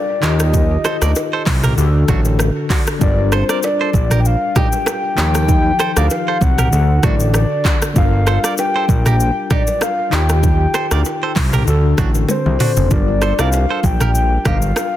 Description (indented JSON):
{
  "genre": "afrobeats",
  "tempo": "97 BPM",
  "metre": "4/4",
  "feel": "swing 55% on 16ths",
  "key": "G minor",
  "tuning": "A4 = 440 Hz",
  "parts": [
    { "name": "soft octave-layered synth lead", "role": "melody", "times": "0.0-15.0 s", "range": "C5 to G5", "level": "-20 LUFS", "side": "left 2 dB", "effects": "chorus, tape echo" },
    { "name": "tine electric piano", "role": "accompaniment", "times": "0.0-15.0 s", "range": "D3 to Bb4", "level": "-23 LUFS", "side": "left 2 dB", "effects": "medium stereo tremolo" },
    { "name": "direct-recorded clean electric guitar", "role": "riff", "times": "0.2-14.6 s", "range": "D4 to D5", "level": "-26 LUFS", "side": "right 6 dB", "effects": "tape echo" },
    { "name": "fat analog bass", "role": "bass", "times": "0.2-14.7 s", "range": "F#1 to Eb2", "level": "-16 LUFS", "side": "equal", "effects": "none" },
    { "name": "afro-pop drum kit", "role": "drums", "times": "0.2-14.9 s", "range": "handclaps, hi-hat, kick drum, rim click, shaker, toms", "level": "-18 LUFS", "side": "equal", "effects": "none" },
    { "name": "bongos and congas", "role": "percussion", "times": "0.2-14.9 s", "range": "none", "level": "-27 LUFS", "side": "right 4 dB", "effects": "none" }
  ],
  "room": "digital ambience",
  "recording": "dense, heavily limited modern master",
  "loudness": "-13 LUFS",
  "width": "side -13 dB against mid",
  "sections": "0.0-12.9 A section; 12.9-15.0 B section",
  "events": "drum fill 12.3-12.9",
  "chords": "0.2 Ebadd9; 1.8 D; 3.0 Gm7; 5.2 Ebadd9; 6.7 D; 8.0 Gm7; 10.1 Ebadd9; 11.7 D; 12.9 Gm7",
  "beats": "| 0.54 1.16 1.77 2.39 | 3.01 3.63 4.25 4.87 | 5.49 6.11 6.72 7.34 | 7.96 8.58 9.20 9.82 | 10.44 11.05 11.67 12.29 | 12.91 13.53 14.15 14.76"
}